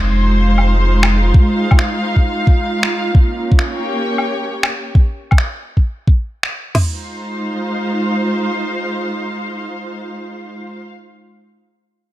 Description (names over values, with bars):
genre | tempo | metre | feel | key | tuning
future garage | 133 BPM | 4/4 | swing 64% on 16ths | F minor | A4 = 443 Hz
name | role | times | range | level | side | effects
muted studio string section | sustained chords | 0.0-10.9 s | Ab3 to G5 | -19 LUFS | right 1 dB | sidechain pumping
soft dub sub bass | bass | 0.0-1.3 s | F1 | -14 LUFS | equal | sidechain pumping
electronic woodblock and finger snaps | drums | 0.6-6.5 s | none | -20 LUFS | left 1 dB | none
organic electronic drum kit | drums | 1.3-6.9 s | crash cymbal, kick drum, snare drum, toms | -11 LUFS | equal | none
room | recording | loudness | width
light reverb, digital ambience | none | -14 LUFS | side -15 dB against mid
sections
0.0-6.7 A section; 6.7-10.4 B section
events
none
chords
0.0 Fm7; 3.1 Gdim; 6.7 Fm7